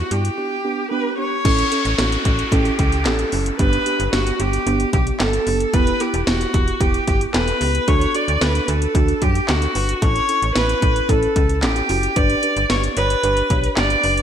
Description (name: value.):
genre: synth-pop.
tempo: 112 BPM.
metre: 4/4.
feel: straight.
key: A mixolydian.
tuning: A4 = 440 Hz.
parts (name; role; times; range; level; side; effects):
rich viola; melody; 0.0-14.2 s; F#4 to D5; -21 LUFS; equal; none.
muted felt-like synth keys; accompaniment; 0.0-14.2 s; B3 to C#5; -23 LUFS; right 3 dB; chorus.
slap-like FM bass; bass; 0.0-14.2 s; E1 to G2; -22 LUFS; equal; none.
house drum kit; drums; 0.1-14.2 s; crash cymbal, handclaps, hi-hat, kick drum, snare drum; -21 LUFS; equal; gated reverb.
downlifter; sound effects; 1.4-5.7 s; none; -29 LUFS; left 1 dB; none.
room: moderate lush hall reverb, RT60 2.5 s.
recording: bright 1980s-style digital production.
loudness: -16 LUFS.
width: side -9 dB against mid.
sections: 0.0-1.5 A section; 1.5-14.2 B section.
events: none.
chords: 0.4 G; 1.5 A7; 3.6 Gadd9; 5.7 Emadd9; 7.9 D; 10.0 A7; 12.2 G.